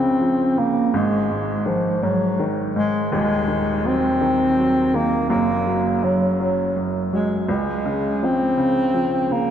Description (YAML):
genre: pop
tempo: 55 BPM (dotted quarters)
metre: 6/8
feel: straight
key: Db major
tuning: A4 = 441 Hz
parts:
  - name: mellow bass clarinet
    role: melody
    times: 0.0-9.5 s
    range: F3 to C4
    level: -19 LUFS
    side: equal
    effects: slapback echo
  - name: clear baby grand piano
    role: accompaniment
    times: 0.0-9.5 s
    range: Eb1 to Gb3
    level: -23 LUFS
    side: equal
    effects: none
room: wet concert hall reverb, RT60 2.5 s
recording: dark, warm production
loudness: -18 LUFS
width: side -9 dB against mid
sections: 0.0-9.5 A section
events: none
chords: 0.0 Dbmaj7; 0.9 Ab5; 3.1 Ebm; 5.3 Gb; 7.5 Dbmaj7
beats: | 0.93 2.03 | 3.12 4.21 | 5.30 6.40 | 7.49 8.59